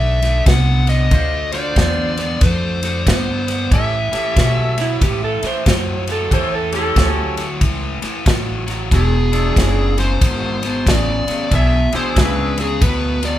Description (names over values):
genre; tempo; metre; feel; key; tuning
electric blues shuffle; 92 BPM; 4/4; swing 63% on 8ths; unclear; A4 = 440 Hz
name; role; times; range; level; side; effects
smooth overdriven lead guitar; melody; 0.0-13.4 s; G#4 to F#5; -22 LUFS; equal; none
biting overdriven guitar; riff; 0.0-13.4 s; E2 to B3; -23 LUFS; left 2 dB; none
upright bass; bass; 0.0-13.4 s; E1 to B2; -19 LUFS; equal; none
natural country drum kit; drums; 0.2-13.3 s; kick drum, ride cymbal, snare drum; -19 LUFS; equal; none
warm horn section; stabs; 1.1-12.7 s; C#4 to C5; -24 LUFS; equal; none
electric slide guitar; second line; 4.8-7.1 s; E4 to C5; -22 LUFS; right 4 dB; none
room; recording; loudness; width
light reverb; band playing live in one room; -14 LUFS; side -13 dB against mid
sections
0.0-13.4 A section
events
none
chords
0.0 D7; 1.1 Dm7; 3.7 A7; 8.9 E7